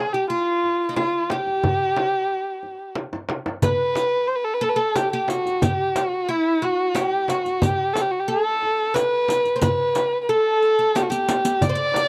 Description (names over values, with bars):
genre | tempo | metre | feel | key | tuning
Persian modal ensemble | 90 BPM | 3/4 | straight | G dastgah mahur from 3.6 s | A4 = 437 Hz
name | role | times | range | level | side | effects
warm kamancheh | melody | 0.0-12.1 s | E4 to D5 | -23 LUFS | equal | none
oud | second line | 0.0-12.1 s | Eb4 to D5 | -29 LUFS | equal | none
tombak | percussion | 0.6-12.1 s | none | -30 LUFS | equal | none
frame drum | percussion | 1.0-12.1 s | none | -30 LUFS | equal | none
riq | percussion | 3.6-12.1 s | none | -32 LUFS | equal | none
room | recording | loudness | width
little or no reverb | dry, close 1970s-style studio recording | -22 LUFS | mono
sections
0.0-3.6 A section; 3.6-12.1 B section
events
drum fill 3.0-3.6, 10.9-11.6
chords
none